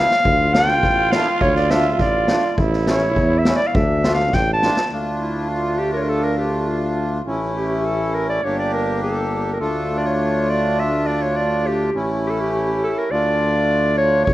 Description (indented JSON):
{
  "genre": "klezmer",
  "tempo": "103 BPM",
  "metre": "2/4",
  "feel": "straight",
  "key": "D harmonic minor",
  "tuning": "A4 = 440 Hz",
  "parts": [
    { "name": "bright clarinet", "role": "melody", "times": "0.0-14.3 s", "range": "E4 to A5", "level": "-20 LUFS", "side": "equal", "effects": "none" },
    { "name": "accordion", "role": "accompaniment", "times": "0.0-14.3 s", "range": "A3 to G4", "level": "-23 LUFS", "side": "equal", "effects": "none" },
    { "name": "mellow tuba", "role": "bass", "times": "0.0-14.3 s", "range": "G1 to E2", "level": "-23 LUFS", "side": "equal", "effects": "none" },
    { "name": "street-band drum kit", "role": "drums", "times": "0.1-4.9, 14.3 s", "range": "kick drum, snare drum", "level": "-22 LUFS", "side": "equal", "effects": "none" },
    { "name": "growling trombone", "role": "second line", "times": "0.2-4.6 s", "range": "D4 to F4", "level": "-23 LUFS", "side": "right 4 dB", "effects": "none" }
  ],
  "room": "moderate recital hall reverb, RT60 1.8 s",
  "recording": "none",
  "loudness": "-17 LUFS",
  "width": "side -15 dB against mid",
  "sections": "0.0-4.9 A section; 4.9-14.3 B section",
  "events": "clarinet solo 0.0-4.9; drum fill 4.3-4.9",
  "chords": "0.3 Dm; 2.6 A; 3.7 Dm; 7.3 A; 8.4 Gm; 9.6 Dm; 11.9 A; 13.1 Dm"
}